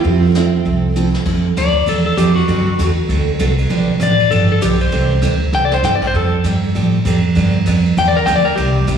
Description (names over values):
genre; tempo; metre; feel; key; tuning
country, western swing; 197 BPM; 4/4; swing 62% on 8ths; F major; A4 = 439 Hz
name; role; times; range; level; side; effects
hollow-body jazz guitar; melody; 0.0-1.1 s; F4; -21 LUFS; right 5 dB; slapback echo
clear fiddle; second line; 0.0-1.1 s; C4; -28 LUFS; right 3 dB; slapback echo
honky-tonk upright piano; accompaniment; 0.0-1.3 s; F3 to E5; -26 LUFS; left 2 dB; slapback echo
picked steel-string acoustic guitar; accompaniment; 0.0-9.0 s; C3 to A4; -19 LUFS; right 5 dB; slapback echo
vintage brush drum kit; drums; 0.0-9.0 s; brushed snare drum, crash cymbal, hi-hat, kick drum, ride cymbal, snare drum; -25 LUFS; right 1 dB; none
upright bass; bass; 0.1-9.0 s; G1 to A2; -16 LUFS; right 1 dB; none
clean lap steel guitar; second line; 1.6-8.9 s; Gb4 to G5; -17 LUFS; left 5 dB; slapback echo
room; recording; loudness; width
light reverb, small room ambience; live gig heard through the venue's PA, recital hall reverb; -12 LUFS; side -7 dB against mid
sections
0.0-1.3 A section; 1.3-9.0 B section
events
drum fill 1.0-1.3, 5.5-5.8; electric slide guitar solo 1.3-9.0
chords
0.0 Fmaj7; 2.5 D7; 3.7 G7; 4.9 C6; 6.1 Fadd9; 7.4 G7